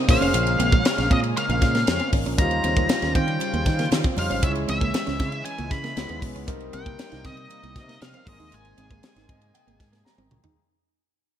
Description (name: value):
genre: polished 1980s jazz-funk pop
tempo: 117 BPM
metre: 4/4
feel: straight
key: Ab major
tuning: A4 = 440 Hz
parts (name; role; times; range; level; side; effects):
- clear concert grand piano; accompaniment; 0.0-10.6 s; G3 to Bb5; -31 LUFS; left 1 dB; wide subtle chorus
- warm analog pad; sustained chords; 0.0-10.6 s; C3 to C5; -32 LUFS; equal; chorus, tremolo
- clean electric guitar; riff; 0.0-10.5 s; Bb3 to Eb4; -31 LUFS; right 4 dB; ensemble chorus
- octave-fuzz lead guitar; melody; 0.1-10.0 s; Eb5 to Cb6; -28 LUFS; equal; distortion, tube saturation
- fingered electric bass; bass; 0.1-10.5 s; F1 to Eb3; -28 LUFS; equal; none
- tight funk drum kit; drums; 0.1-10.6 s; hi-hat, kick drum, ride cymbal, snare drum, toms; -24 LUFS; equal; gated reverb
- congas; percussion; 2.6-10.4 s; none; -39 LUFS; left 2 dB; none
room: light reverb, small room ambience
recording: bright 1980s-style digital production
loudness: -20 LUFS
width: side -10 dB against mid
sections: 0.0-10.6 A section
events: fade-out 0.0-10.6; grand piano fill 9.0-10.6; drum fill 10.1-10.6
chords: 0.1 Bbm9; 2.4 Eb13; 4.4 Dbm; 6.0 Dbm7; 6.5 Cm7; 8.3 Abmaj9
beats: | 0.34 0.85 1.36 1.88 | 2.39 2.90 3.41 3.92 | 4.43 4.95 5.46 5.97 | 6.48 6.99 7.50 8.02 | 8.53 9.04 9.55 10.06